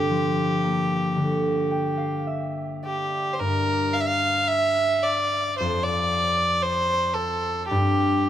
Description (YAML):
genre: celtic folk, Celtic slow air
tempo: 52-60 BPM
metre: 4/4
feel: rubato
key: G dorian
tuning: A4 = 440 Hz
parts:
  - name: warm fiddle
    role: melody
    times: 0.0-8.3 s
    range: G4 to F5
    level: -23 LUFS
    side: right 1 dB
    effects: tape echo
  - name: concert harp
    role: accompaniment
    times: 0.0-8.3 s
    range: F2 to G5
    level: -25 LUFS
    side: left 1 dB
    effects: none
room: light reverb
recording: close, detailed microphones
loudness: -21 LUFS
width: side -11 dB against mid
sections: 0.0-3.4 A section; 3.4-8.3 B section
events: harp fill 1.2-3.4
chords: 0.0 Gm7; 3.4 N.C.